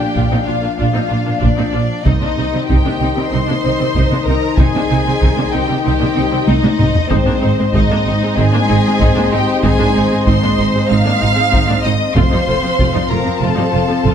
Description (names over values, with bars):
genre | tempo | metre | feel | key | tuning
cinematic, epic orchestral film score | 95 BPM | 4/4 | straight | C minor | A4 = 440 Hz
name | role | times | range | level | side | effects
rich symphonic violin section | melody | 0.0-14.1 s | C5 to F6 | -23 LUFS | left 5 dB | none
rich symphonic violin section | second line | 0.0-14.1 s | C4 to F5 | -21 LUFS | equal | none
rich symphonic viola section | accompaniment | 0.0-14.1 s | F3 to F4 | -23 LUFS | right 1 dB | none
dark symphonic string section | sustained chords | 0.0-14.1 s | F3 to F5 | -22 LUFS | equal | none
mellow French horn section | sustained chords | 0.0-14.1 s | Eb3 to Eb4 | -22 LUFS | left 6 dB | none
rich symphonic cello section | bass | 0.0-14.1 s | F2 to C3 | -20 LUFS | right 3 dB | none
clear symphonic double bass section | bass | 0.2-14.1 s | F1 to C2 | -20 LUFS | right 3 dB | none
taiko ensemble | drums | 0.2-14.1 s | none | -17 LUFS | equal | none
room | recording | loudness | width
light reverb | close, detailed microphones | -12 LUFS | side -8 dB against mid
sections
0.0-14.1 A section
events
drum fill 6.5-7.1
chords
0.0 Bb; 2.1 Cm; 7.1 Ab; 12.2 F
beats
0.16 0.79 1.43 | 2.06 2.69 3.32 3.95 | 4.58 5.21 5.85 6.48 | 7.11 7.74 8.37 9.01 | 9.64 10.27 10.90 11.53 | 12.16 12.79 13.43 14.06